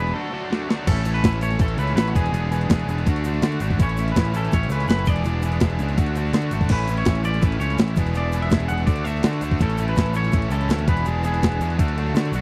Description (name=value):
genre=indie rock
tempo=165 BPM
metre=4/4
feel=straight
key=A major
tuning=A4 = 442 Hz
part: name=twangy electric guitar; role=melody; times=0.0-12.3 s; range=F#4 to F#5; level=-31 LUFS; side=equal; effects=slapback echo
part: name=overdriven electric guitar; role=riff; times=0.0-12.4 s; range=A2 to A4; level=-31 LUFS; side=equal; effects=analog chorus, slapback echo
part: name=scooped high-gain guitar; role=riff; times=0.0-12.4 s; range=E2 to A4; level=-34 LUFS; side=equal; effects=distortion
part: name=picked electric bass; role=bass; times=0.0-12.4 s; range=E1 to D3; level=-25 LUFS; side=equal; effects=none
part: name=clean 12-bit digital drum machine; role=drums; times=0.1-12.4 s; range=crash cymbal, hi-hat, kick drum, snare drum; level=-22 LUFS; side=equal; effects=none
part: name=egg shaker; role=percussion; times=0.1-12.4 s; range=none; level=-52 LUFS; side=equal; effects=none
room=little or no reverb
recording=dry, close 1970s-style studio recording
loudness=-21 LUFS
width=mono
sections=0.9-12.4 A section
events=break 0.1-0.9; drum fill 0.5-0.9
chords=0.1 D; 0.9 A; 2.1 E7; 3.1 D; 3.8 A; 5.1 E7; 6.0 D; 6.7 A; 8.0 E7; 8.9 D; 9.6 A; 10.9 E7; 11.8 D